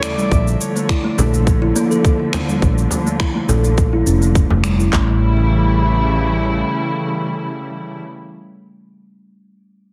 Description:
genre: organic downtempo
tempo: 104 BPM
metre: 4/4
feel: straight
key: A phrygian dominant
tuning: A4 = 440 Hz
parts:
  - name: muted studio string section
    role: sustained chords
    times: 0.0-8.0 s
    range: C#3 to E4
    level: -23 LUFS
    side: equal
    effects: sidechain pumping
  - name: electronic finger snaps and cabasa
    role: drums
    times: 0.0-4.9 s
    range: none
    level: -28 LUFS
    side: equal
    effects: soft clipping on snare
  - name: kalimba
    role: arpeggios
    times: 0.2-5.2 s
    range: G3 to A4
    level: -24 LUFS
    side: equal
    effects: low-pass filter, delay
  - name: woody fretless electric bass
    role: bass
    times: 0.3-6.6 s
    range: F1 to Bb1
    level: -19 LUFS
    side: equal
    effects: none
  - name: organic electronic drum kit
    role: drums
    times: 0.3-5.1 s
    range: handclaps, kick drum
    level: -20 LUFS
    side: equal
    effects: none
  - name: frame drum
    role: percussion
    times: 1.2-4.6 s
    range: none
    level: -28 LUFS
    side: equal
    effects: none
room: moderate echo chamber reverb, RT60 1.3 s, studio ambience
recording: dense, heavily limited modern master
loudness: -17 LUFS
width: mono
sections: 0.0-4.9 A section; 4.9-7.2 B section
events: none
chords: 0.3 Bbmaj7; 4.9 A7

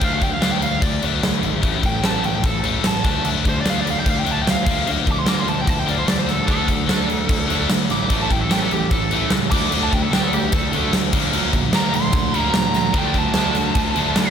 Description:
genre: hard rock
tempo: 148 BPM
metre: 4/4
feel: straight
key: D minor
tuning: A4 = 438 Hz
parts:
  - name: smooth overdriven lead guitar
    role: melody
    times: 0.0-14.3 s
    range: G4 to D6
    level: -25 LUFS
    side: right 2 dB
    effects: analog delay
  - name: scooped high-gain guitar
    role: riff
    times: 0.0-14.3 s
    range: A2 to D4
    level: -24 LUFS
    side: left 8 dB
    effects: distortion
  - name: fuzz picked electric bass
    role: bass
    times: 0.0-14.3 s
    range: G#1 to D2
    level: -25 LUFS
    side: equal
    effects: overdrive
  - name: huge arena drum kit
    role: drums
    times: 0.0-14.3 s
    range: crash cymbal, kick drum, snare drum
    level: -20 LUFS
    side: right 1 dB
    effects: none
  - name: distorted electric guitar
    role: riff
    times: 6.5-14.3 s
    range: A2 to D4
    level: -26 LUFS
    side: right 11 dB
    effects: distortion
  - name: high-gain distorted guitar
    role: riff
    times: 12.9-14.3 s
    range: D3 to F4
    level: -28 LUFS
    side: right 3 dB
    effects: distortion, slapback echo
room: light reverb, small room ambience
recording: none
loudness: -17 LUFS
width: side -8 dB against mid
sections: 0.0-14.3 A section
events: lead electric guitar solo 0.0-14.3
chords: 0.0 D5; 1.6 A5; 3.1 D5; 4.7 Bb/D; 6.5 D5; 8.1 A5; 9.5 D5; 11.1 Bb/D; 13.0 Dm

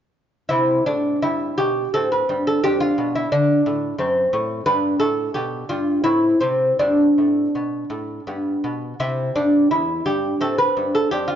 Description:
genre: classical, baroque-style dance for lute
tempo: 79-89 BPM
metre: 3/4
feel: rubato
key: C major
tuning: A4 = 438 Hz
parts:
  - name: lute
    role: solo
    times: 0.5-11.4 s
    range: E2 to B4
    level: -18 LUFS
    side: equal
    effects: none
room: moderate recital hall reverb, RT60 1.3 s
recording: worn, warbling old tape, cassette tape, warbly pitch drift, nothing above 7.5 kHz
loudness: -18 LUFS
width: side -9 dB against mid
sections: 0.5-11.4 A section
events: none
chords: 0.5 C5; 1.9 Am; 2.6 Dm/F; 4.0 F#dim; 4.7 G; 6.1 Am; 6.8 Gsus4; 8.3 G; 9.0 C; 10.4 Am

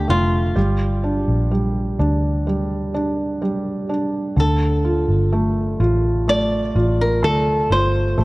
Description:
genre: pop ballad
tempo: 63 BPM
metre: 4/4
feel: straight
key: D minor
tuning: A4 = 440 Hz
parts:
  - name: flamenco guitar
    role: melody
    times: 0.0-8.2 s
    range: F4 to D5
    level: -22 LUFS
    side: equal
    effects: none
  - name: felt-muted upright piano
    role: accompaniment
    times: 0.0-8.2 s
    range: D3 to F4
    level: -21 LUFS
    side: right 1 dB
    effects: none
  - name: vintage muted fingered electric bass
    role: bass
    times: 0.0-8.2 s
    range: F1 to D2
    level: -20 LUFS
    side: equal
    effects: none
room: light reverb, small room ambience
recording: worn, warbling old tape, cassette tape, warbly pitch drift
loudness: -17 LUFS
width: side -20 dB against mid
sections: 0.0-8.2 A section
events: none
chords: 0.0 Dm; 0.6 Gm7; 4.4 Dm

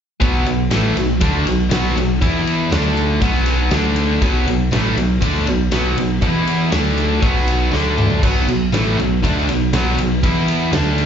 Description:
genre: classic rock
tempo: 120 BPM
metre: 4/4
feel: straight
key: unclear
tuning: A4 = 439 Hz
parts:
  - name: overdriven electric guitar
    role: riff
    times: 0.2-11.1 s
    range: A2 to E4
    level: -20 LUFS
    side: right 11 dB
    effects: slapback echo
  - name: tight distorted guitar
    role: riff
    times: 0.2-11.1 s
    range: A2 to E4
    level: -21 LUFS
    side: left 10 dB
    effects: distortion
  - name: deep dub picked electric bass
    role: bass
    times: 0.2-11.1 s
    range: A1 to E2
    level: -20 LUFS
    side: equal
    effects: none
  - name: big rock drum kit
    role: drums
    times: 0.2-11.1 s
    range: crash cymbal, kick drum, ride cymbal, snare drum, toms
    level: -21 LUFS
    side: equal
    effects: none
  - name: tambourine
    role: percussion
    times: 0.2-11.1 s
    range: none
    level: barely audible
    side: none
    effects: none
room: light reverb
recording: live gig heard through the venue's PA, club reverb, nothing above 7.5 kHz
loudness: -14 LUFS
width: side -8 dB against mid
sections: 0.2-11.1 A section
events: drum fill 7.7-8.2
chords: 0.2 B5; 2.2 E5; 2.7 D5; 3.2 B5; 3.7 D5; 4.2 B5; 6.2 E5; 6.7 D5; 7.2 B5; 7.7 D5; 8.2 B5; 10.2 E5

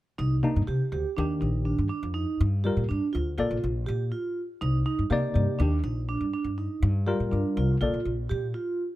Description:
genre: progressive instrumental, progressive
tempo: 244 BPM (eighths)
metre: 9/8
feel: straight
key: unclear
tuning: A4 = 440 Hz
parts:
  - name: vibraphone with soft mallets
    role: arpeggios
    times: 0.2-8.8 s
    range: D4 to G4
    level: -31 LUFS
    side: right 4 dB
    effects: plate reverb
  - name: upright bass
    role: bass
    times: 0.2-8.5 s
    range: Bb1 to C3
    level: -26 LUFS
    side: equal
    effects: none
  - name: bright tine electric piano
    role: accompaniment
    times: 0.4-8.0 s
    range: C3 to D5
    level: -28 LUFS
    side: left 3 dB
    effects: overdrive, medium tremolo, plate reverb
room: light reverb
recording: none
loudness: -25 LUFS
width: side -16 dB against mid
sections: 0.2-9.0 A section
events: none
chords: 0.2 Cm9; 1.2 Ebmaj7; 2.4 Gm7; 3.4 Bbmaj7; 4.6 Cm9; 5.6 Ebmaj7; 6.8 Gm7; 7.8 Bbmaj7

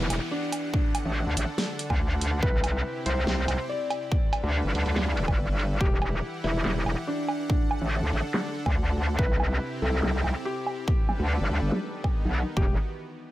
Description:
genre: heavy wobble dubstep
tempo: 142 BPM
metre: 4/4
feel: half-time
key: E minor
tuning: A4 = 439 Hz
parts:
  - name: felt-muted upright piano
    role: melody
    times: 0.0-12.7 s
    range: D4 to D5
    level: -34 LUFS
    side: left 1 dB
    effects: digital delay
  - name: supersaw pad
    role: sustained chords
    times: 0.0-12.8 s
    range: C3 to F#5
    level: -35 LUFS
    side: equal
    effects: sidechain pumping
  - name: metallic wobble bass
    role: bass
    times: 0.0-12.8 s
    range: E1 to D2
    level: -26 LUFS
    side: equal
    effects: chorus, overdrive
  - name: downlifter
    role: sound effects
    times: 0.0-2.4 s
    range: none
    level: -41 LUFS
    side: equal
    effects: none
  - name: dubstep drum kit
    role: drums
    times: 0.1-12.4 s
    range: handclaps, hi-hat, snare drum, woodblock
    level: -31 LUFS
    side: right 1 dB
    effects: low-pass filter on cymbals, low-pass filter on hats, low-pass filter on perc, low-pass filter on snare
  - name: electronic kick drum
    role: drums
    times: 0.7-12.7 s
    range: none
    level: -26 LUFS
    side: equal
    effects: none
room: light reverb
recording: none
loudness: -24 LUFS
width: side -16 dB against mid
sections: 0.0-12.6 A section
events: filter sweep on drum 0.0-12.6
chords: 0.0 Emadd9; 0.7 D; 2.4 C; 4.1 Gadd9; 5.8 Emadd9; 7.5 D; 9.2 C; 10.9 Gadd9; 11.7 B; 12.6 Emadd9

